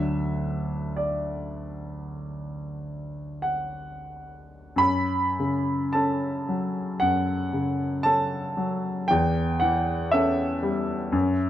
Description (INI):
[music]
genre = classical, romantic nocturne for solo piano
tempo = 40-60 BPM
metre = 4/4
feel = rubato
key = unclear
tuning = A4 = 441 Hz
[part]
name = clear baby grand piano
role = solo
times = 0.0-11.5 s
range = D2 to B5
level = -24 LUFS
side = equal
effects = none
[sound]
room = light reverb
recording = dark, warm production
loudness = -23 LUFS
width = side -12 dB against mid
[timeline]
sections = 0.0-4.8 A section; 4.8-11.5 B section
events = none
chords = 0.0 D; 4.8 F#m; 9.1 A7/E